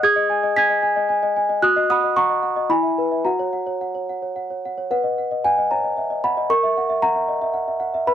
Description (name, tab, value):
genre	classical, lullaby for celesta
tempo	112 BPM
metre	3/4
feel	straight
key	B major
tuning	A4 = 436 Hz
part	celesta	solo	0.0-8.1 s	E4 to B6	-18 LUFS	equal	none
room	little or no reverb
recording	dry, close 1970s-style studio recording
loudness	-18 LUFS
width	side -10 dB against mid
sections	0.0-4.9 A section; 4.9-8.1 B section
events	none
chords	0.0 G#m; 1.6 D#m/F#; 2.7 E; 3.3 F#; 4.9 B; 6.5 F#7/A#